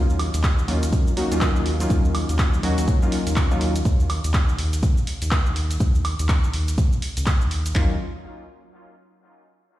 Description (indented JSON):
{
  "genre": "deep house",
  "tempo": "123 BPM",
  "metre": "4/4",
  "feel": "swing 60% on 16ths",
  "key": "Eb minor",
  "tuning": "A4 = 440 Hz",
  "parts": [
    { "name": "warm analog keys", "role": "stabs", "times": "0.0-3.7, 7.7-8.0 s", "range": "Gb3 to Gb4", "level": "-26 LUFS", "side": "left 1 dB", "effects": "chorus, dub echo" },
    { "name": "round analog bass", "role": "bass", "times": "0.0-8.0 s", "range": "Bb1 to Eb2", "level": "-23 LUFS", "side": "equal", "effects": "sidechain pumping" },
    { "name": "punchy analog drum machine", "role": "drums", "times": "0.1-7.7 s", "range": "cabasa, handclaps, hi-hat, woodblock", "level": "-29 LUFS", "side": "right 1 dB", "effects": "none" },
    { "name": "deep house drum kit", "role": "drums", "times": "0.4-7.9 s", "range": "handclaps, kick drum, toms", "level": "-20 LUFS", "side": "equal", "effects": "none" }
  ],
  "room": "little or no reverb",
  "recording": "played on a big sound system in a bare room, stone room reverb",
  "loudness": "-19 LUFS",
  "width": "side -15 dB against mid",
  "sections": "0.0-7.8 A section; 7.8-9.7 B section",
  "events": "filter sweep on analog synth bass 0.0-7.8",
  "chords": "0.0 Ebm9"
}